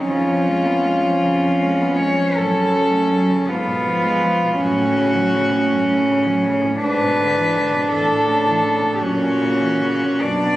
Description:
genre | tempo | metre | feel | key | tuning
classical, lyrical piece for cello ensemble | 54 BPM (dotted quarters) | 6/8 | rubato | F# minor | A4 = 440 Hz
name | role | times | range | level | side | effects
warm cello | melody | 0.0-10.6 s | E#4 to D5 | -21 LUFS | left 2 dB | none
rich cello | second line | 0.0-10.6 s | Cb4 to D4 | -19 LUFS | right 1 dB | none
warm cello | accompaniment | 0.0-10.6 s | E2 to B3 | -25 LUFS | left 2 dB | none
warm cello | bass | 0.1-10.6 s | E#2 to B2 | -24 LUFS | right 1 dB | none
room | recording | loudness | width
moderate concert hall reverb, RT60 1.8 s | recorded on a phone in the room, studio reverb, compression | -16 LUFS | side -15 dB against mid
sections
0.0-10.6 A section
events
none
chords
0.1 C#7/E#; 2.4 F#m; 3.5 Fdim/Ab; 4.6 F#m; 6.8 E7/G#; 7.9 A/E; 9.0 F#7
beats
| 0.09 1.24 | 2.35 3.48 | 4.60 5.70 | 6.83 7.92 | 9.02 10.22

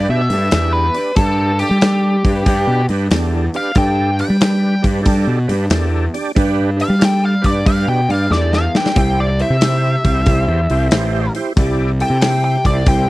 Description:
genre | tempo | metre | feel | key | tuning
blues rock power trio and southern rock | 92 BPM | 4/4 | swing 66% on 8ths | G mixolydian | A4 = 441 Hz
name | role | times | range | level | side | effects
biting lead guitar | melody | 0.0-13.1 s | G4 to G5 | -20 LUFS | left 1 dB | wah, overdrive
overdriven tonewheel organ | sustained chords | 0.0-13.1 s | D4 to D5 | -23 LUFS | right 3 dB | slow rotary speaker, chorus vibrato
fuzz picked electric bass | bass | 0.0-13.1 s | A1 to G3 | -16 LUFS | equal | overdrive
big rock drum kit | drums | 0.3-13.1 s | hi-hat, kick drum, snare drum | -18 LUFS | equal | none
room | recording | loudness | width
little or no reverb | dry, close 1970s-style studio recording | -13 LUFS | side -18 dB against mid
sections
0.0-13.1 A section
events
lead electric guitar solo 0.0-13.1; drum fill 8.3-9.0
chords
0.0 G; 9.0 C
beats
0.52 | 1.17 1.82 2.47 3.12 | 3.76 4.41 5.06 5.71 | 6.36 7.01 7.66 8.31 | 8.96 9.61 10.26 10.91 | 11.57 12.22 12.87

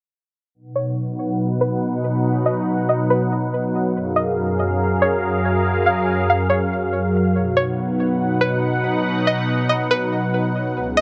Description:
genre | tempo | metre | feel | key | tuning
hip hop | 141 BPM | 4/4 | half-time | B lydian | A4 = 440 Hz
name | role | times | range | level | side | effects
sweeping resonant pad | sustained chords | 0.5-11.0 s | C#2 to F#5 | -21 LUFS | equal | chorus, low-pass filter
string-like resonator pluck | melody | 0.8-11.0 s | B4 to E#5 | -24 LUFS | equal | chorus, low-pass filter, dub echo
room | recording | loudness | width
light reverb, digital ambience | echo-heavy mix | -20 LUFS | mono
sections
0.5-11.0 A section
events
filter sweep 0.5-11.0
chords
0.5 B; 4.0 F#maj7; 7.4 B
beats
| 0.55 0.97 1.40 1.82 | 2.25 2.67 3.10 3.52 | 3.95 4.38 4.80 5.23 | 5.65 6.08 6.50 6.93 | 7.35 7.78 8.21 8.63 | 9.06 9.48 9.91 10.33 | 10.76

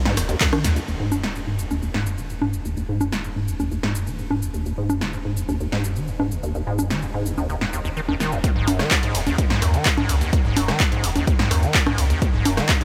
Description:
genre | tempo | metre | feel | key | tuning
acid house | 127 BPM | 4/4 | straight | Eb minor | A4 = 439 Hz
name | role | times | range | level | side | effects
deep acid bass | riff | 0.1-12.8 s | Db2 to Eb3 | -26 LUFS | equal | overdrive, subtle chorus, sidechain pumping, delay
punchy analog drum machine | drums | 0.1-12.8 s | cabasa, congas, handclaps, hi-hat, ride cymbal, rim click, snare drum | -26 LUFS | equal | overdrive
warm sub bass | bass | 0.2-12.6 s | Eb1 to Eb2 | -30 LUFS | equal | sidechain pumping
electronic kick drum | drums | 0.4-0.5, 8.4-12.8 s | none | -23 LUFS | equal | overdrive
room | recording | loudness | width
moderate huge ambient reverb, RT60 7.4 s | dreamy mix soaked in reverb | -22 LUFS | mono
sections
0.9-8.4 A section; 8.4-12.8 B section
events
filter sweep on acid bass 0.9-8.4; drop 8.4-12.8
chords
0.0 N.C.; 0.9 Ebm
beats
0.41 | 0.88 1.35 1.82 2.30 | 2.77 3.24 3.71 4.19 | 4.66 5.13 5.60 6.08 | 6.55 7.02 7.49 7.97 | 8.44 8.91 9.38 9.86 | 10.33 10.80 11.27 11.75 | 12.22 12.69

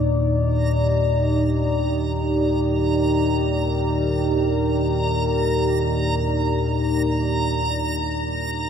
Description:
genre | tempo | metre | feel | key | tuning
dark ambient drone | free time | none | none | Eb major | A4 = 435 Hz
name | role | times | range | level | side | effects
deep dark ambient pad | sustained chords | 0.0-8.7 s | D#4 to D5 | -22 LUFS | equal | chorus, built-in reverb
deep rumbling drone | drone | 0.0-8.7 s | Eb2 to Bb2 | -23 LUFS | left 1 dB | built-in reverb
backwards swelling texture | texture | 0.6-8.7 s | Bb5 | -29 LUFS | right 2 dB | built-in reverb
room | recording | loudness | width
wet huge ambient reverb, RT60 8.1 s | none | -19 LUFS | side -8 dB against mid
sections
0.0-8.7 A section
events
fade-out 6.3-8.7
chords
0.0 Eb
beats
free time

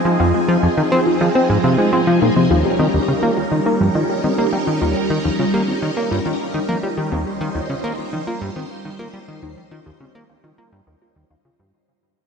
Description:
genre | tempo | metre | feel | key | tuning
ambient, sequencer-driven space music | 104 BPM | 4/4 | straight | unclear | A4 = 439 Hz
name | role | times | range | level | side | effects
phased string machine | sustained chords | 0.0-11.7 s | F3 to C5 | -21 LUFS | right 1 dB | ensemble chorus, phaser, shimmer reverb
plucky analog bass | riff | 0.1-11.7 s | Eb2 to C4 | -19 LUFS | equal | analog delay, shimmer reverb
warbly dusty pluck | arpeggios | 0.2-11.7 s | F3 to F5 | -24 LUFS | moving between left 7 dB and right 1 dB | chorus, auto-pan, analog delay, shimmer reverb
room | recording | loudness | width
wet plate reverb, RT60 3.5 s | dark, warm production | -16 LUFS | side -6 dB against mid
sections
0.0-11.7 A section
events
fade-out 2.5-11.7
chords
0.0 Fm7; 2.5 Eb7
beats
| 0.20 0.78 1.35 1.93 | 2.51 3.08 3.66 4.24 | 4.81 5.39 5.97 6.54 | 7.12 7.70 8.28 8.85 | 9.43 10.01 10.58 11.16

